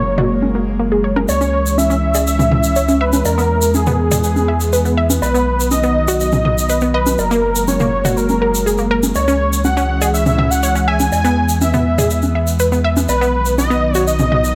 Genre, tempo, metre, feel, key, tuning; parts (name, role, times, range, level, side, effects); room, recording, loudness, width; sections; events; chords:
progressive house; 122 BPM; 4/4; straight; C# dorian; A4 = 441 Hz
unison lead; melody; 0.0-14.6 s; G#4 to G#5; -21 LUFS; equal; cassette tape, tape echo
airy breathy pad; sustained chords; 0.0-14.6 s; D#3 to C#4; -23 LUFS; equal; chorus
saturated sub bass; bass; 0.0-14.6 s; F#1 to E2; -22 LUFS; equal
unison pluck; arpeggios; 0.2-14.4 s; A#3 to E5; -23 LUFS; equal; tape echo
electronic toms, bongos and congas; percussion; 0.2-14.4 s; -22 LUFS; equal
egg shaker; percussion; 1.3-14.5 s; -27 LUFS; equal
light reverb, digital ambience; -15 LUFS; mono
0.0-14.6 A section
filter sweep on synth pluck 0.0-14.6
0.0 F#add9; 1.3 C#m; 3.3 E; 5.2 B; 7.2 F#add9; 9.2 C#m; 11.1 E; 13.1 B